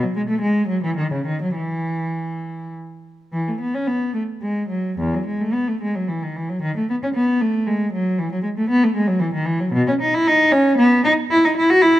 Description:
classical, baroque-style suite movement for unaccompanied cello; 100-121 BPM; 3/4; rubato; E major; A4 = 440 Hz
dark cello; solo; 0.0-12.0 s; E2 to F#4; -17 LUFS; equal
moderate scoring stage reverb, RT60 1.5 s; close, detailed microphones; -17 LUFS; side -14 dB against mid
0.0-3.3 A section; 3.3-12.0 B section

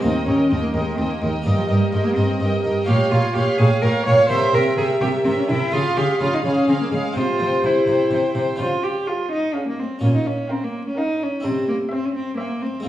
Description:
classical, baroque-style concerto movement with solo episodes; 126 BPM; 3/4; straight; A4 = 445 Hz
dark studio violin section; melody; 0.0-12.7 s; F5 to G5; -36 LUFS; right 1 dB
rich cello; melody; 0.0-12.9 s; F3 to Db5; -21 LUFS; equal
warm chamber violin section; second line; 0.0-12.7 s; C5 to F5; -28 LUFS; left 1 dB
dark chamber viola section; accompaniment; 0.0-12.7 s; Ab4 to Db5; -27 LUFS; right 1 dB
harpsichord; accompaniment; 0.0-12.9 s; Eb2 to F4; -25 LUFS; right 1 dB
warm chamber cello section; bass; 0.0-12.9 s; Eb2 to Db3; -22 LUFS; right 1 dB
wet recital hall reverb, RT60 1.3 s; vinyl crackle, studio reverb; -17 LUFS; side -13 dB against mid
0.0-8.6 A section; 8.6-12.9 A section
0.0 Eb; 1.5 Eb/G; 2.9 Gm7b5/Bb; 4.3 C7; 5.7 Db; 7.2 C; 8.6 Db; 10.0 Gm7b5/Bb; 11.4 C

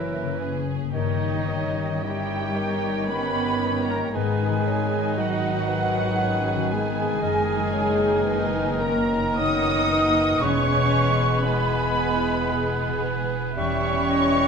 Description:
classical; 57 BPM; 3/4; uneven beats, rubato; A4 = 443 Hz
muted symphonic violin section; melody; 0.0-14.5 s; D#5 to D#6; -30 LUFS; left 1 dB
flute section; second line; 0.0-14.5 s; D#5 to D#6; -31 LUFS; right 3 dB
mellow clarinet; second line; 0.0-14.5 s; G#4 to G#5; -33 LUFS; left 2 dB
muted symphonic violin section; second line; 0.0-14.5 s; A#3 to A#4; -34 LUFS; equal
warm oboe; second line; 0.0-14.5 s; A#4 to C#5; -34 LUFS; right 2 dB
muted symphonic viola section; accompaniment; 0.0-14.5 s; D#4 to D#5; -30 LUFS; equal
warm bassoon; accompaniment; 0.0-14.5 s; D#3 to G#3; -31 LUFS; right 2 dB
dark French horn section; sustained chords; 0.0-14.5 s; D#3 to D#4; -29 LUFS; left 3 dB
concert harp; arpeggios; 0.0-14.5 s; E2 to D#5; -30 LUFS; left 10 dB
muted symphonic cello section; bass; 0.0-14.5 s; D#3 to D#4; -31 LUFS; right 4 dB
muted symphonic double bass section; bass; 0.0-14.5 s; E1 to G#1; -30 LUFS; right 3 dB
moderate scoring stage reverb, RT60 1.6 s; close, detailed microphones; -21 LUFS; side -6 dB against mid
0.0-14.5 A section
0.0 F#7; 0.9 D#7/G; 4.2 G#m7; 7.2 D#m/F#; 10.4 E; 13.6 C#m7b5/E

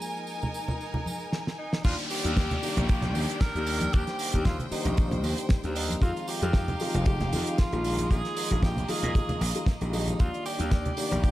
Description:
nu-disco, nu disco; 115 BPM; 4/4; swing 54% on 16ths; Eb major; A4 = 439 Hz
dark baby grand piano; accompaniment; 0.0-11.3 s; Eb3 to Ab4; -34 LUFS; left 2 dB
rich studio violin section; sustained chords; 0.0-11.3 s; G3 to Ab5; -37 LUFS; equal; sidechain pumping
tambourine and congas; percussion; 0.0-11.3 s; -35 LUFS; right 1 dB
damped 70s drum kit; drums; 1.3-11.3 s; crash cymbal, hi-hat, snare drum; -33 LUFS; right 2 dB; studio reverb
clear tenor saxophone; melody; 1.6-11.3 s; Eb4 to Bb4; -34 LUFS; right 1 dB; tape echo
gritty slap bass; bass; 1.8-11.3 s; F1 to Bb2; -30 LUFS; equal; overdrive
kick drum; drums; 1.8-11.3 s; -24 LUFS; equal; studio reverb
downlifter; sound effects; 1.8-6.0 s; -38 LUFS; equal
small room ambience; -25 LUFS; side -15 dB against mid
0.0-1.8 A section; 1.8-11.3 B section
drum fill 1.3-1.8; drop 1.8-11.3
0.0 Bb7sus4; 1.8 Ebmaj7; 6.0 Fm7; 7.8 Bb7sus4; 10.2 Ebmaj7

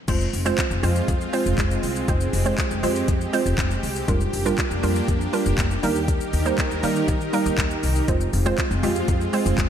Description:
dance-pop; 120 BPM; 4/4; straight; F dorian; A4 = 440 Hz
hollow square pluck; accompaniment; 0.1-9.7 s; G3 to C5; -25 LUFS; right 3 dB; chorus, sidechain pumping
supersaw pad; sustained chords; 0.1-9.7 s; Eb3 to Bb4; -27 LUFS; right 1 dB; sidechain pumping
upright bass; bass; 0.1-9.7 s; F1 to Eb3; -24 LUFS; left 1 dB; sidechain pumping
smooth R&B drum kit; drums; 0.1-9.7 s; crash cymbal, handclaps, hi-hat, kick drum, shaker; -26 LUFS; left 1 dB
moderate church reverb, RT60 2.8 s; dreamy mix soaked in reverb; -20 LUFS; side -9 dB against mid
0.1-9.7 A section
0.1 Fm; 4.1 Bb6/F; 5.8 Eb; 8.1 Fm

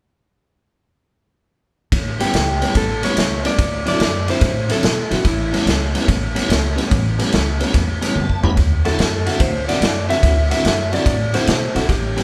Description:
electric blues shuffle; 144 BPM; 4/4; swing 67% on 8ths; A4 = 441 Hz
upright bass; bass; 1.9-12.2 s; A1 to B2; -24 LUFS; equal
raw garage drum kit; drums; 1.9-12.2 s; kick drum, ride cymbal, snare drum, toms; -21 LUFS; equal
electric slide guitar; melody; 2.2-5.6, 8.9-12.2 s; E4 to E5; -25 LUFS; equal
tonewheel organ; accompaniment; 2.2-12.2 s; C4 to B5; -30 LUFS; equal; slow rotary speaker, overdrive, chorus vibrato
electric guitar through a small old amp; riff; 2.2-12.2 s; A2 to F#4; -26 LUFS; equal
light reverb; band playing live in one room; -18 LUFS; mono
1.9-12.2 A section
tonewheel organ fill 7.7-8.6; drum fill 8.2-8.6
1.9 A9; 3.6 D9; 5.3 A9; 8.6 D9

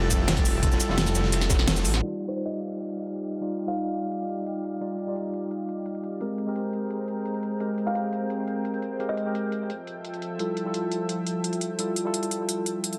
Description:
liquid drum and bass; 172 BPM; 4/4; straight; Eb major; A4 = 442 Hz
tine electric piano; accompaniment; 0.0-13.0 s; G3 to D5; -32 LUFS; equal; digital delay
lush unison pad; sustained chords; 0.0-13.0 s; F3 to A5; -36 LUFS; equal; chorus
swelling detuned saw bass; bass; 0.0-2.0 s; F1 to A1; -28 LUFS; equal
crunchy breakbeat drum kit; drums; 0.1-2.0 s; ride cymbal, snare drum; -36 LUFS; equal; high-pass filter on cymbals, high-pass filter on snare, high-pass filter on room
electronic kick drum; drums; 0.1-1.6 s; -27 LUFS; equal
pop drum kit; drums; 0.1-13.0 s; hi-hat, ride cymbal, shaker, snare drum; -31 LUFS; equal
kalimba; melody; 2.3-3.9, 7.9-9.3 s; C5 to F5; -38 LUFS; equal; dub echo
light reverb, small room reverb; low-pass filter; -28 LUFS; mono
0.0-2.0 A section; 2.0-13.0 B section
drop 0.0-2.0; kick drops out 1.7-2.0; band accent 1.7; filter sweep 2.0-13.0
0.0 Fmaj9; 2.0 Ebmaj9; 6.2 Abmaj9; 9.7 Fmaj9

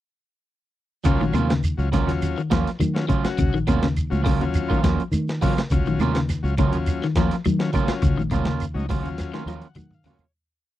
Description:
afrobeat; 103 BPM; 4/4; straight; Eb minor; A4 = 439 Hz
electric guitar at the edge of break-up; stabs; 1.0-10.2 s; Gb3 to F4; -26 LUFS; right 8 dB
shekere; percussion; 1.0-10.3 s; -27 LUFS; equal
combo organ; accompaniment; 1.1-10.3 s; Gb3 to Bb5; -29 LUFS; left 6 dB
electric guitar at the edge of break-up; arpeggios; 1.1-10.3 s; C3 to Gb3; -25 LUFS; left 4 dB; phaser
fingered electric bass; bass; 1.1-10.2 s; Bb1 to Eb3; -25 LUFS; equal
boom bap sampler-style drum kit; drums; 1.1-10.3 s; hi-hat, kick drum, snare drum, toms; -25 LUFS; equal
congas; percussion; 1.2-10.2 s; -30 LUFS; right 4 dB
claves; percussion; 1.3-10.3 s; -41 LUFS; right 15 dB
little or no reverb; dry, close 1970s-style studio recording, lossy compression artefacts; -20 LUFS; side -14 dB against mid
1.0-10.3 groove
fade-out 8.0-10.3; drum fill 9.2-10.3; transistor combo organ fill 9.2-10.3
1.0 Ebm9

